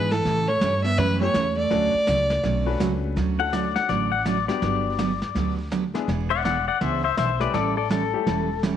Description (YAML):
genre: country, western swing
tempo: 165 BPM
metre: 4/4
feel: swing 63% on 8ths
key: D major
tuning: A4 = 440 Hz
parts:
  - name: clear fiddle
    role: melody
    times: 0.0-2.8 s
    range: A4 to E5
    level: -23 LUFS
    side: equal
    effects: none
  - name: vintage hollow-body jazz guitar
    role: second line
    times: 0.0-2.8 s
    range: E3 to B3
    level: -30 LUFS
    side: right 7 dB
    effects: slapback echo
  - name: bright upright piano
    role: accompaniment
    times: 0.0-8.3 s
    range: G3 to B4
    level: -31 LUFS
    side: left 9 dB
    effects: none
  - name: upright bass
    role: bass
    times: 0.0-8.8 s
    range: E1 to A2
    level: -27 LUFS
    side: equal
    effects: none
  - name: vintage brush drum kit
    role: drums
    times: 0.1-8.8 s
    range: brushed snare drum, hi-hat, snare drum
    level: -31 LUFS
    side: equal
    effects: none
  - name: picked steel-string acoustic guitar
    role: accompaniment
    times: 0.3-8.8 s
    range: C#3 to A4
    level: -28 LUFS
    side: right 6 dB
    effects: none
  - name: pedal steel guitar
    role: second line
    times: 3.4-8.6 s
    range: A4 to F#5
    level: -24 LUFS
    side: left 9 dB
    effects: none
room: moderate echo chamber reverb, RT60 1.3 s, studio reverb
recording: 1960s-style stereo with parts hard left and right, vinyl crackle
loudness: -21 LUFS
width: side -9 dB against mid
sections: 0.0-3.2 A section; 3.2-8.8 B section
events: pedal steel guitar solo 3.2-8.8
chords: 0.2 A9; 1.7 Dmaj7; 4.6 Gmaj7; 6.1 E7; 7.5 A7